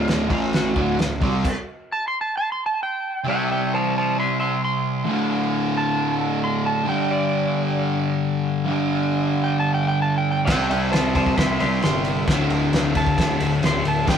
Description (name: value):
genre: garage rock duo or trio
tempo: 133 BPM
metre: 4/4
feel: straight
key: unclear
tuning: A4 = 436 Hz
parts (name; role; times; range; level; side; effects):
- electric slide guitar; melody; 0.0-14.2 s; F4 to C6; -25 LUFS; right 1 dB; digital delay
- fuzz guitar; riff; 0.0-14.2 s; D2 to C4; -21 LUFS; equal; distortion
- fuzz picked electric bass; bass; 0.0-1.4, 10.5-14.2 s; D1 to C2; -26 LUFS; equal; overdrive
- cloth-damped thuddy drum kit; drums; 0.1-1.6, 10.5-14.2 s; crash cymbal, kick drum, ride cymbal, snare drum; -23 LUFS; equal; none
room: moderate stone room reverb, RT60 1.0 s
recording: rough rehearsal-room recording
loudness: -19 LUFS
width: side -8 dB against mid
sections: 0.0-3.3 A section; 3.3-14.2 B section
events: electric slide guitar solo 0.0-3.3; stop 1.4-3.3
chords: 0.3 A5; 0.8 D; 1.2 C5; 1.9 N.C.; 3.3 C; 5.1 D5; 6.9 G5; 10.5 C; 12.3 D5